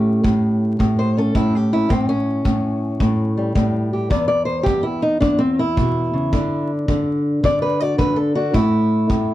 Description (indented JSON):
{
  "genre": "acoustic country blues, solo or duo",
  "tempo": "108 BPM",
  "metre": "4/4",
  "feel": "swing 67% on 8ths",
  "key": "A mixolydian",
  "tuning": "A4 = 440 Hz",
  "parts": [
    { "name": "fingerpicked old ladder-braced acoustic guitar", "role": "melody", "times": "0.0-9.3 s", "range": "E2 to D5", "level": "-17 LUFS", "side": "equal", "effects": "none" },
    { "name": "kick drum", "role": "drums", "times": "0.2-9.3 s", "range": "none", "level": "-23 LUFS", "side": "equal", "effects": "none" }
  ],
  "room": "little or no reverb",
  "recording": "vinyl crackle",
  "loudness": "-16 LUFS",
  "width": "side -14 dB against mid",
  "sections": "0.0-9.3 A section",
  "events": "steel-string acoustic guitar solo 0.0-9.3",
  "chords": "0.0 A7; 4.1 E5; 6.3 D; 8.5 N.C."
}